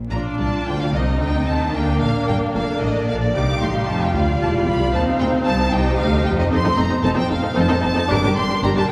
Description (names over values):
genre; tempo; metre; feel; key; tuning
quick classical-period movement for string orchestra; 75 BPM (dotted quarters); 6/8; rubato; Bb major; A4 = 438 Hz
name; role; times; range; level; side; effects
warm symphonic violin section; melody; 0.1-8.9 s; D5 to D6; -28 LUFS; equal; none
warm symphonic violin section; second line; 0.1-8.9 s; D4 to F5; -28 LUFS; equal; none
rich symphonic viola section; accompaniment; 0.1-8.9 s; G3 to G4; -24 LUFS; equal; none
rich symphonic cello section; bass; 0.1-8.8 s; C2 to Eb3; -26 LUFS; equal; none
rich symphonic double bass section; bass; 0.1-8.7 s; E1 to Eb2; -25 LUFS; equal; none
room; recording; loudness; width
wet concert hall reverb, RT60 2.3 s; heard from further back in the room, vinyl crackle; -19 LUFS; mono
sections
0.1-8.9 A section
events
none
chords
0.1 Bb (rootless); 0.9 Cm69; 1.7 Bb; 3.3 Cm; 4.2 Fmaj7sus2; 4.9 Cm; 6.5 F7; 8.1 Gm